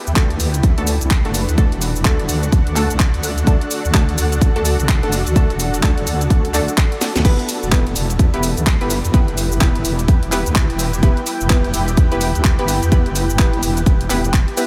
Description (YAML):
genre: bass house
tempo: 127 BPM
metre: 4/4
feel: swing 61% on 16ths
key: E minor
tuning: A4 = 440 Hz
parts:
  - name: orchestra-hit-like synth stab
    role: stabs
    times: 0.0-14.7 s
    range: A3 to B4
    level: -26 LUFS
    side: equal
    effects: built-in reverb, sidechain pumping, diffuse ambient delay
  - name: granular cloud pad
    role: texture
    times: 0.0-14.7 s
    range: D4 to G5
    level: -28 LUFS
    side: equal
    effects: built-in reverb, ensemble chorus, sidechain pumping
  - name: wobble bass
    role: bass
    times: 0.1-14.5 s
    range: E1 to E2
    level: -23 LUFS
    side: equal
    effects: chorus, overdrive, sidechain pumping
  - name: house drum kit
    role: drums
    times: 0.1-14.7 s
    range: crash cymbal, handclaps, hi-hat, shaker, snare drum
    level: -26 LUFS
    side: equal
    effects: none
  - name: electronic kick drum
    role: drums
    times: 0.2-14.5 s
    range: none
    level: -16 LUFS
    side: equal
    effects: none
room: light reverb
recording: none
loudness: -17 LUFS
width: mono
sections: 0.0-14.7 A section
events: drum fill 7.0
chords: 0.0 D; 7.2 Em